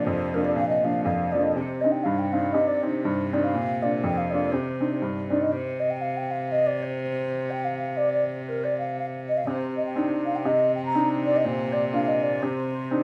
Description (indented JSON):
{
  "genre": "celtic folk, Celtic polka",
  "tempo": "121 BPM",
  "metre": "2/4",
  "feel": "swing 58% on 8ths",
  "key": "C minor",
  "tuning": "A4 = 440 Hz",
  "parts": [
    { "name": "mellow hollow baroque flute", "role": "melody", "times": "0.0-13.0 s", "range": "Bb4 to Bb5", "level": "-28 LUFS", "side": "equal", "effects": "plate reverb" },
    { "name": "clear upright piano", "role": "accompaniment", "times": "0.0-5.5, 9.5-13.0 s", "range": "F2 to F4", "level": "-28 LUFS", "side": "equal", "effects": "none" },
    { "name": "rich cello", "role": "drone", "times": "0.0-13.0 s", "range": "C3", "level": "-34 LUFS", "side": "equal", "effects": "none" }
  ],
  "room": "wet studio reverb, RT60 0.6 s",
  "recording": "none",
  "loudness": "-25 LUFS",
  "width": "mono",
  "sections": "0.0-5.5 A section; 5.5-13.0 A section",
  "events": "none",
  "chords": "0.0 Bb; 1.6 Cmadd9; 3.5 Bb; 4.5 Cmadd9; 5.5 N.C.; 9.5 Cmadd9; 11.4 Bb; 12.4 Cmadd9",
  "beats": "0.07 | 0.56 1.06 | 1.55 2.05 | 2.55 3.04 | 3.54 4.03 | 4.53 5.02 | 5.52 6.01 | 6.51 7.00 | 7.50 7.99 | 8.48 8.98 | 9.47 9.96 | 10.46 10.95 | 11.44 11.93 | 12.42 12.92"
}